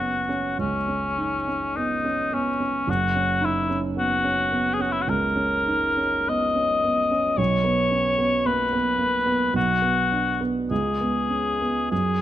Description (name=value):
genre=classical, romantic duo for cor anglais and grand piano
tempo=48-56 BPM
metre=4/4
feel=rubato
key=F# major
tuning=A4 = 440 Hz
part: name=warm cor anglais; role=melody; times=0.0-12.2 s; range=C#4 to D#5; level=-23 LUFS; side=left 2 dB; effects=none
part: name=warm grand piano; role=accompaniment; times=0.0-12.2 s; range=F#1 to D#4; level=-25 LUFS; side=right 3 dB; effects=none
room=light reverb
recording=close, detailed microphones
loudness=-21 LUFS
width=side -12 dB against mid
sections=0.0-12.2 A section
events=none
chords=0.0 F#sus4; 7.4 Bsus2; 9.6 Bm; 10.7 C#5